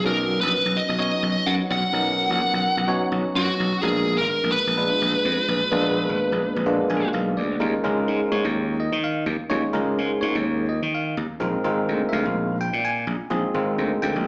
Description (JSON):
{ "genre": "jazz", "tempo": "127 BPM", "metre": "4/4", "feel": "swing 55% on 16ths", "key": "Eb minor", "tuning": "A4 = 440 Hz", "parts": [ { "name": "smooth overdriven lead guitar", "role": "melody", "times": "0.0-7.1 s", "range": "F#4 to F#5", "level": "-25 LUFS", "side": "equal", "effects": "none" }, { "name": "bell-like tine electric piano", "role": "accompaniment", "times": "0.0-14.3 s", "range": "F#3 to Ab5", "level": "-27 LUFS", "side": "equal", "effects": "slapback echo" }, { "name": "slap bass", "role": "bass", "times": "0.0-14.3 s", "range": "Ab1 to Eb3", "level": "-28 LUFS", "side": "equal", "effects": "none" } ], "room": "light reverb, digital ambience", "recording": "live gig heard through the venue's PA, club reverb, small speaker sound", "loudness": "-23 LUFS", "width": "mono", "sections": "0.0-7.6 A section; 7.6-14.3 B section", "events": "tine electric piano fill 6.7-7.6", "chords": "0.1 Bmaj7; 3.8 Bb7b9; 7.6 Eb9sus4; 11.4 Bb9sus4" }